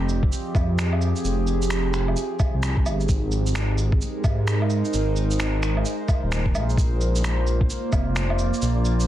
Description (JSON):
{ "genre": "future garage", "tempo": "130 BPM", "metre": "4/4", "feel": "swing 62% on 16ths", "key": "unclear", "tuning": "A4 = 440 Hz", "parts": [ { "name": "warbly tape-like pad", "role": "sustained chords", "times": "0.0-9.1 s", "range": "F3 to Eb5", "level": "-28 LUFS", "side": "right 1 dB", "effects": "chorus, built-in reverb, phaser, sidechain pumping" }, { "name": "dark detuned saw bass", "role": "bass", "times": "0.0-9.1 s", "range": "Eb1 to Ab2", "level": "-22 LUFS", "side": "equal", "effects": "sidechain pumping" }, { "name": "electronic cabasa, shaker, woodblock and finger snaps", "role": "drums", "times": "0.1-9.1 s", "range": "none", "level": "-31 LUFS", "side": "equal", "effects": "soft clipping on snare" }, { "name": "electronic kick drum", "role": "drums", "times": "0.2-8.0 s", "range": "none", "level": "-22 LUFS", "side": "equal", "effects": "none" } ], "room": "little or no reverb", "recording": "dense, heavily limited modern master", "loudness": "-20 LUFS", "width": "side -13 dB against mid", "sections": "0.0-9.1 A section", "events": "none", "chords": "0.0 Fm7; 3.1 Abmaj7; 6.8 Bb" }